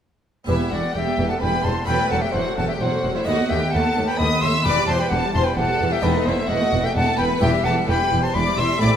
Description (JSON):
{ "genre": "classical, baroque-style concerto movement with solo episodes", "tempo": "130 BPM", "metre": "3/4", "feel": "straight", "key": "E minor", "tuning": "A4 = 444 Hz", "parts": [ { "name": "harpsichord", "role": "accompaniment", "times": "0.4-9.0 s", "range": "D#2 to B4", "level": "-29 LUFS", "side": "equal", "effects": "none" }, { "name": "concert flute", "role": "melody", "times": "0.5-9.0 s", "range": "B4 to C6", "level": "-24 LUFS", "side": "left 1 dB", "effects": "none" }, { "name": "warm studio violin section", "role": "melody", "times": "0.5-9.0 s", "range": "D#5 to E6", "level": "-27 LUFS", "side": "left 2 dB", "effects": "none" }, { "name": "rich chamber violin section", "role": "second line", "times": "0.5-8.9 s", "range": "D#4 to E5", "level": "-27 LUFS", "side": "equal", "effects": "none" }, { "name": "warm studio viola section", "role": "accompaniment", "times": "0.5-9.0 s", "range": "E3 to B3", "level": "-27 LUFS", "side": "right 1 dB", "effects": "none" }, { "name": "warm chamber cello section", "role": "bass", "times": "0.5-8.9 s", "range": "D#2 to A2", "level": "-26 LUFS", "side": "right 1 dB", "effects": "none" }, { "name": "warm chamber double bass section", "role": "bass", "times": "0.5-8.9 s", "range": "E1 to D#2", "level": "-25 LUFS", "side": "right 1 dB", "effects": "none" } ], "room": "wet stone room reverb, RT60 1.3 s", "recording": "none", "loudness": "-18 LUFS", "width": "side -8 dB against mid", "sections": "0.5-9.0 A section", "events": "none", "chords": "0.5 Em; 1.9 F#m7b5/E; 3.3 B7/D#; 4.7 Em; 6.0 B7/E; 7.4 Em", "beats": "| 0.49 0.95 1.42 | 1.88 2.35 2.81 | 3.27 3.73 4.20 | 4.66 5.12 5.58 | 6.04 6.50 6.97 | 7.43 7.89 8.36 | 8.82" }